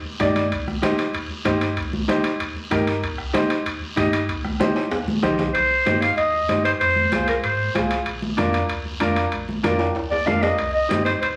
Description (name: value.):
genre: latin, cumbia.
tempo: 191 BPM.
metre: 4/4.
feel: straight.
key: C minor.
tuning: A4 = 440 Hz.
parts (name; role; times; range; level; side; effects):
congas; percussion; 0.1-11.1 s; none; -29 LUFS; equal; none.
clear upright piano; accompaniment; 0.2-11.1 s; C4 to Eb5; -26 LUFS; equal; none.
pure sine sub bass; bass; 0.2-11.4 s; Bb1 to Ab2; -32 LUFS; equal; none.
bombo; percussion; 0.2-5.4 s; none; -37 LUFS; equal; none.
guiro; percussion; 0.2-11.4 s; none; -38 LUFS; equal; none.
timbales; percussion; 0.2-11.4 s; none; -32 LUFS; equal; none.
warm clarinet; melody; 5.5-7.7, 10.1-11.3 s; Bb4 to F5; -22 LUFS; equal; none.
room: wet large studio reverb, RT60 0.8 s.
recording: vinyl crackle.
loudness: -22 LUFS.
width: mono.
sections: 0.0-5.5 A section; 5.5-11.4 B section.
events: drum fill 4.6-5.5, 9.8-10.6.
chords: 0.0 Cm; 6.8 Fm; 8.1 Bb; 10.6 Cm.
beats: 0.20 | 0.52 0.83 1.15 1.46 | 1.77 2.09 2.40 2.72 | 3.03 3.35 3.66 3.98 | 4.29 4.60 4.92 5.23 | 5.55 5.86 6.18 6.49 | 6.81 7.12 7.44 7.75 | 8.07 8.38 8.70 9.01 | 9.33 9.64 9.96 10.27 | 10.59 10.90 11.22.